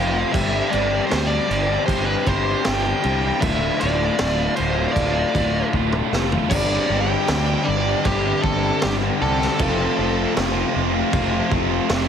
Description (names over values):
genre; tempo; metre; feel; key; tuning
quiet-loud alternative rock; 78 BPM; 4/4; straight; unclear; A4 = 442 Hz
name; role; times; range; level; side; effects
nasal lead guitar with a parked wah; melody; 0.0-10.3 s; G4 to G5; -24 LUFS; right 1 dB; overdrive
crunchy overdriven guitar; riff; 0.0-12.1 s; D2 to G4; -25 LUFS; left 14 dB; none
overdriven electric guitar; riff; 0.0-12.1 s; D2 to G4; -27 LUFS; right 14 dB; none
fuzz fingered electric bass; bass; 0.0-12.1 s; D1 to D2; -24 LUFS; right 1 dB; overdrive
raw garage drum kit; drums; 0.3-12.1 s; crash cymbal, kick drum, snare drum, toms; -24 LUFS; right 1 dB; none
tight distorted guitar; riff; 6.5-12.1 s; F2 to G3; -26 LUFS; right 1 dB; distortion
room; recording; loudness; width
small room ambience; heavily compressed radio sound; -18 LUFS; side -8 dB against mid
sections
0.0-6.5 A section; 6.5-12.1 B section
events
drum fill 5.7-6.5; lead electric guitar solo 6.5-12.1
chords
0.3 Gsus4; 3.4 Dm; 6.5 Gsus4; 9.6 F